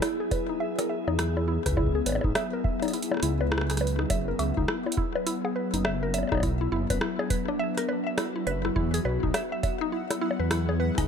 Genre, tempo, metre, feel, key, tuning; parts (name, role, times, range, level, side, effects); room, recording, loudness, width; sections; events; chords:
IDM; 103 BPM; 4/4; swing 62% on 16ths; E major; A4 = 442 Hz
glassy FM pad; sustained chords; 0.0-11.1 s; F#3 to G#4; -31 LUFS; left 2 dB; ensemble chorus, built-in reverb, phaser, shimmer reverb
mallet-like synth pluck; arpeggios; 0.0-11.1 s; D4 to E5; -31 LUFS; left 1 dB; chorus, ping-pong delay, shimmer reverb
electro analog drum machine; drums; 0.0-11.1 s; bongos, hi-hat, rim click; -32 LUFS; left 1 dB; ping-pong delay
electronic kick drum; drums; 0.3-11.1 s; -30 LUFS; right 1 dB
dark detuned saw bass; bass; 1.1-11.1 s; F#1 to E2; -28 LUFS; right 1 dB
pulsing gated texture; texture; 9.1-11.1 s; F#5; -48 LUFS; left 2 dB; chorus, built-in reverb, shimmer reverb
light reverb, digital ambience; -25 LUFS; side -7 dB against mid
0.0-11.1 A section
filter sweep on synth arpeggio sound 0.0-11.1
0.0 E; 1.8 C#m; 4.1 F#sus2; 6.4 Bm; 8.8 E